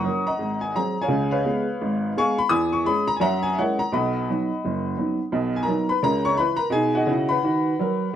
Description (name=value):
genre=jazz, stride piano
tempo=171 BPM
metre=4/4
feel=swing 61% on 8ths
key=B major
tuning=A4 = 445 Hz
part: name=clear upright piano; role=solo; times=0.0-8.2 s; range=F#1 to D#6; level=-20 LUFS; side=equal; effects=none
room=moderate club reverb, RT60 0.6 s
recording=dark, warm production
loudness=-20 LUFS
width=side -10 dB against mid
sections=0.0-5.3 A section; 5.3-8.2 B section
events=none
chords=0.4 G#7; 1.1 C#7; 2.5 C#m/E; 3.2 F#9; 3.9 B; 6.0 A#dim/C#; 6.7 B